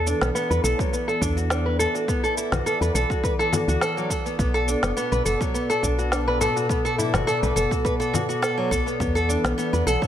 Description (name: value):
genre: organic downtempo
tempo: 104 BPM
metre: 4/4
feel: swing 53% on 16ths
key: unclear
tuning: A4 = 436 Hz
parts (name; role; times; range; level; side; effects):
- warm analog pad; sustained chords; 0.0-10.1 s; B2 to D5; -29 LUFS; left 1 dB; chorus, sidechain pumping
- nylon-string guitar; arpeggios; 0.0-10.1 s; F#3 to B4; -24 LUFS; equal; low-pass filter, ping-pong delay
- woody FM bass; bass; 0.0-10.0 s; F#1 to E2; -25 LUFS; equal; sidechain pumping
- electronic shaker, snare drum and congas; drums; 0.1-10.1 s; none; -29 LUFS; left 1 dB; none
- electronic kick drum; drums; 0.8-10.1 s; none; -27 LUFS; equal; overdrive
- frame drum; percussion; 6.4-7.5 s; none; -33 LUFS; left 3 dB; none
room: light reverb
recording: none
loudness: -20 LUFS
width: side -10 dB against mid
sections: 0.0-10.1 A section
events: none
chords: 0.0 E5; 4.4 Bm7; 9.0 E5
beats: 0.35 0.93 1.50 | 2.08 2.66 3.23 3.81 | 4.39 4.96 5.54 6.12 | 6.70 7.27 7.85 8.43 | 9.00 9.58